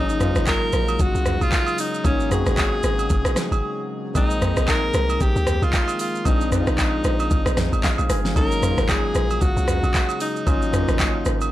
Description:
amapiano; 114 BPM; 4/4; swing 58% on 16ths; A4 = 440 Hz
breathy alto saxophone; melody; 0.0-11.5 s; Db4 to Bb4; -26 LUFS; equal; tape echo
soft electric-piano-like synth keys; accompaniment; 0.0-11.5 s; F3 to Ab5; -28 LUFS; left 3 dB; chorus
chamber organ, principal; sustained chords; 0.0-11.5 s; Db3 to C4; -32 LUFS; left 2 dB; sidechain pumping
deep log drum bass; bass; 0.0-11.5 s; Gb1 to D2; -23 LUFS; equal
smooth R&B drum kit; drums; 0.1-11.5 s; handclaps, hi-hat, kick drum, rim click, shaker, snare drum, toms; -22 LUFS; equal
agogo bells and woodblock; percussion; 0.5-11.5 s; -31 LUFS; right 5 dB
digital ambience; dry, gritty hardware recording, transformer saturation; -18 LUFS; side -14 dB against mid
0.0-11.5 A section
break 3.6-4.2; synth keys fill 7.6-8.4
0.0 Ab9sus4; 4.2 Bb9sus4; 8.4 Ab9sus4

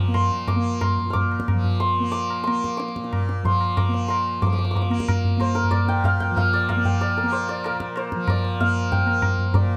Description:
indian classical, Hindustani; 185 BPM; 4/4; straight; Bb raga bhupali; A4 = 442 Hz
santur; melody; 0.0-9.8 s; Bb4 to F6; -27 LUFS; equal
tanpura; drone; 0.0-9.8 s; Bb2 to Bb3; -30 LUFS; equal
tabla; percussion; 0.1-9.7 s; -25 LUFS; equal
light reverb; close, detailed microphones; -22 LUFS; mono
0.0-4.4 A section; 4.4-9.8 B section
speeding up 0.0-9.8

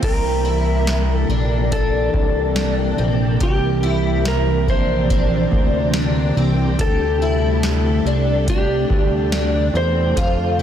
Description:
dream pop; 71 BPM; 4/4; straight; C mixolydian; A4 = 440 Hz
clean lap steel guitar; melody; 0.0-10.6 s; G4 to C5; -23 LUFS; equal; ping-pong delay
ensemble organ-string; sustained chords; 0.0-10.6 s; C3 to A4; -22 LUFS; equal; phaser, ensemble chorus
picked twelve-string acoustic guitar; arpeggios; 0.0-10.6 s; C4 to G4; -25 LUFS; left 1 dB; ensemble chorus, ping-pong delay
fat analog bass; bass; 0.0-10.6 s; Bb1 to F2; -20 LUFS; equal
booming analog drum machine; drums; 0.0-10.4 s; crash cymbal, hi-hat, kick drum, snare drum; -22 LUFS; equal
light reverb; dense, heavily limited modern master; -16 LUFS; side -9 dB against mid
0.0-10.6 A section
0.0 C9; 6.8 D7sus4

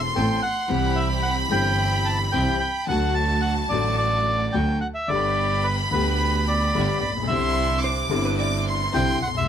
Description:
tango; 110 BPM; 4/4; rubato; A4 = 442 Hz
warm chamber violin section; second line; 0.0-9.4 s; A5 to D6; -28 LUFS; right 1 dB
warm grand piano; accompaniment; 0.0-9.5 s; E1 to A4; -27 LUFS; left 5 dB
rich chamber string section; stabs; 0.0-9.2 s; A3 to A4; -33 LUFS; left 1 dB
warm double bass; bass; 0.0-9.5 s; E1 to D2; -25 LUFS; right 3 dB
bandoneon; melody; 0.2-9.5 s; B4 to A5; -25 LUFS; equal
vintage hollow-body jazz guitar; second line; 7.8-8.8 s; B4 to D5; -32 LUFS; right 1 dB
little or no reverb; close, detailed microphones; -20 LUFS; side -9 dB against mid
0.0-9.5 A section
0.0 Amadd9; 0.7 C; 2.9 D; 5.1 G; 7.3 Cadd9

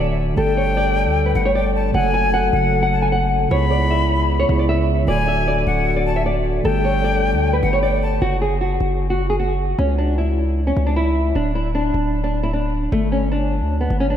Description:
hip hop; 153 BPM; 4/4; half-time; A4 = 440 Hz
nylon-string guitar; melody; 0.0-14.2 s; A3 to G#5; -21 LUFS; equal; lush chorus, low-pass filter, tape echo
mellow tine electric piano; accompaniment; 0.0-8.2 s; C#3 to A4; -24 LUFS; right 4 dB; low-pass filter
dark brass ensemble; sustained chords; 0.0-8.2 s; C#3 to A4; -25 LUFS; left 4 dB; stereo widening
distorted 808-style bass; bass; 0.0-14.2 s; D1 to D2; -20 LUFS; equal; distortion
jazz flute; second line; 0.4-8.2 s; F#5 to B5; -24 LUFS; left 3 dB; tape echo
moderate lush hall reverb, RT60 2.9 s; dreamy mix soaked in reverb; -16 LUFS; side -9 dB against mid
0.0-8.2 A section; 8.2-14.2 B section
0.4 Gsus2; 1.9 F#m; 3.5 C#m7; 5.1 D; 6.6 Gsus2; 8.2 N.C.; 9.8 C#m; 11.4 N.C.; 12.9 G5

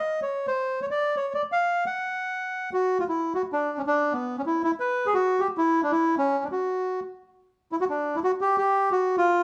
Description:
tango; 174 BPM; 3/4; rubato; A4 = 440 Hz
bandoneon; solo; 0.0-9.4 s; B3 to F#5; -25 LUFS; equal
moderate large studio reverb, RT60 1.0 s; band playing live in one room; -26 LUFS; mono
0.0-3.1 A section; 3.1-9.4 B section

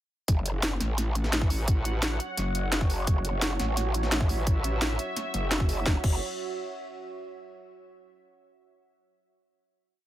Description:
dark technical drum and bass; 172 BPM; 4/4; straight; F# minor; A4 = 440 Hz
deep dark ambient pad; sustained chords; 1.0-6.0 s; F#4 to F#5; -35 LUFS; right 2 dB; chorus, built-in reverb, sidechain pumping
growl bass; bass; 0.3-6.2 s; F#1 to A1; -29 LUFS; equal; chorus, overdrive, sidechain pumping
drum and bass drum kit; drums; 0.3-6.1 s; crash cymbal, hi-hat, snare drum; -30 LUFS; equal; overdrive
electronic kick drum; drums; 0.3-6.1 s; -25 LUFS; equal
digital ambience; -25 LUFS; side -14 dB against mid
0.3-5.9 drop; 5.9-7.3 final chord
drop 0.3-5.9
0.3 F#5

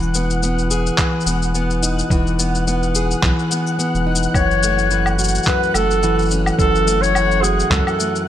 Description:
folktronica; 107 BPM; 4/4; swing 56% on 16ths; A4 = 440 Hz
fingerpicked plugged-in steel-string acoustic guitar; arpeggios; 0.0-8.3 s; F#2 to G#4; -20 LUFS; equal; low-pass filter, digital delay
warm sub bass; bass; 0.0-7.8 s; E1 to C#2; -21 LUFS; equal
electronic cabasa, handclaps and woodblock; drums; 0.0-8.3 s; -22 LUFS; left 2 dB
flickering grainy texture; texture; 0.0-8.3 s; F#5 to F#6; -26 LUFS; equal; built-in reverb
electronic kick drum; drums; 1.0-7.8 s; -20 LUFS; equal
warm clarinet; melody; 4.3-8.3 s; G#4 to C#5; -18 LUFS; equal; digital delay
light reverb, digital ambience; -15 LUFS; side -11 dB against mid
0.0-8.3 A section
filter sweep on steel-string acoustic guitar 0.0-8.3
0.0 Emaj7; 4.3 F#m7

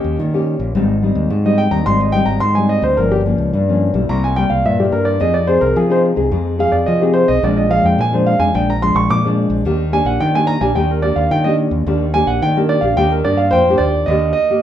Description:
samba and choro; 108 BPM; 4/4; straight; Eb major; A4 = 437 Hz
warm concert grand piano; melody; 0.0-14.6 s; G4 to D6; -16 LUFS; right 1 dB
nylon-string guitar; accompaniment; 0.0-14.6 s; F2 to Ab4; -17 LUFS; left 2 dB
growling fingered electric bass; bass; 0.0-14.3 s; G1 to F3; -18 LUFS; equal; overdrive
moderate large studio reverb, RT60 0.8 s; minimal, uncompressed stereo recording; -13 LUFS; side -10 dB against mid
0.0-14.1 A section
grand piano solo 0.0-14.1
0.0 Eb7; 0.8 Abmaj7; 3.0 Gm7b5; 4.1 C7; 5.2 Fm7; 7.4 Bb7; 9.7 Ebmaj7

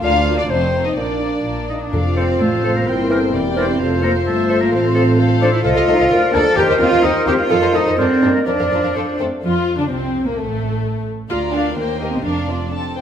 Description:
quick classical-period movement for symphony orchestra; 128 BPM; 2/4; straight; F major, Bb major from 5.6 s; A4 = 440 Hz
warm chamber violin section; melody; 0.0-13.0 s; A3 to Bb5; -28 LUFS; left 4 dB
bright clarinet; second line; 0.0-9.1 s; A4 to F5; -27 LUFS; left 2 dB
warm chamber violin section; second line; 0.0-13.0 s; A3 to F5; -27 LUFS; left 4 dB
mellow bassoon; accompaniment; 0.0-9.2 s; D3 to D4; -24 LUFS; equal
warm chamber viola section; accompaniment; 0.0-12.7 s; A3 to C5; -24 LUFS; equal
warm French horn section; sustained chords; 0.0-9.3 s; A3 to F4; -22 LUFS; left 2 dB
warm chamber cello section; bass; 0.0-13.0 s; D2 to A4; -20 LUFS; right 2 dB
warm chamber double bass section; bass; 0.0-13.0 s; E1 to G2; -23 LUFS; right 2 dB
warm oboe; second line; 1.7-9.2 s; A4 to A5; -25 LUFS; left 2 dB
timpani; percussion; 1.9-2.6 s; F2; -24 LUFS; left 1 dB
flute section; second line; 2.2-9.2 s; C5 to Eb5; -24 LUFS; left 3 dB
wet recital hall reverb, RT60 1.4 s; -14 LUFS; side -9 dB against mid
0.0-1.9 A section; 1.9-9.4 B section; 9.4-13.0 A section
0.0 Bb/D; 0.5 F7; 1.0 Bb; 1.9 F; 2.9 C7/G; 3.8 F; 4.7 F/A; 5.6 F7/C; 6.1 Bb; 6.6 Cm7/Eb; 7.5 F7; 8.0 Gm (rootless); 8.5 Bb/F; 9.0 F; 9.4 Bb/F; 10.4 N.C.; 11.3 Bb/D; 11.8 Cm7/Eb; 12.2 Bb/F

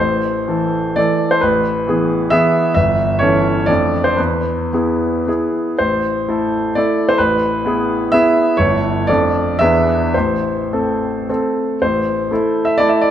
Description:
classical, romantic triple-time dance for piano with dotted rhythms; 101-144 BPM; 3/4; rubato; A minor; A4 = 441 Hz
clear grand piano; solo; 0.0-13.1 s; G1 to E5; -14 LUFS; equal
wet concert hall reverb, RT60 1.9 s; -14 LUFS; side -10 dB against mid
0.0-11.8 A section; 11.8-13.1 A section
0.0 Am; 1.4 E/A; 2.8 A7/G; 3.7 Dm/F; 4.2 E; 5.8 Am; 7.2 E/A; 8.6 A7/G; 9.1 Dm/F; 9.6 E7; 10.1 Am

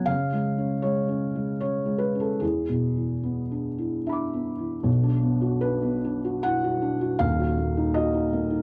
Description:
neoclassical minimalist piano; 76 BPM; 3/4; uneven beats, rubato; A4 = 439 Hz
felt-muted upright piano; solo; 0.0-8.6 s; D#1 to D6; -26 LUFS; equal
little or no reverb; dry, close 1970s-style studio recording; -26 LUFS; mono
0.0-4.9 A section; 4.9-8.6 B section
0.1 C#; 2.4 E7; 4.9 Bm; 7.2 D#m

